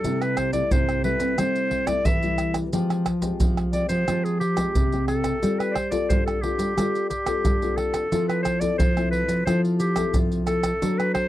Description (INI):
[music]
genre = samba and choro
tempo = 89 BPM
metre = 4/4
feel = straight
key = unclear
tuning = A4 = 441 Hz
[part]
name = clear clarinet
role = melody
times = 0.0-11.3 s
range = G4 to E5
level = -26 LUFS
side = equal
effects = none
[part]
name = nylon-string guitar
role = accompaniment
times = 0.0-11.3 s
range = C3 to A4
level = -29 LUFS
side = left 6 dB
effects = none
[part]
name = nylon-string guitar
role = bass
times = 0.0-11.3 s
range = C3 to C4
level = -26 LUFS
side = right 1 dB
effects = none
[part]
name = maracas, surdo, pandeiro and tamborim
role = percussion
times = 0.0-11.3 s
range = none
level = -26 LUFS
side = right 1 dB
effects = none
[sound]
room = light reverb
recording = dry, close 1970s-style studio recording, tape saturation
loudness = -21 LUFS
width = side -14 dB against mid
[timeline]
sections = 0.0-11.3 A section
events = none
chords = 0.0 Am7/C; 2.7 Fmadd9; 5.4 G9sus4; 8.1 Fmaj7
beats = | 0.04 0.71 1.39 2.06 | 2.73 3.40 4.08 4.75 | 5.42 6.10 6.77 7.45 | 8.12 8.79 9.47 10.14 | 10.82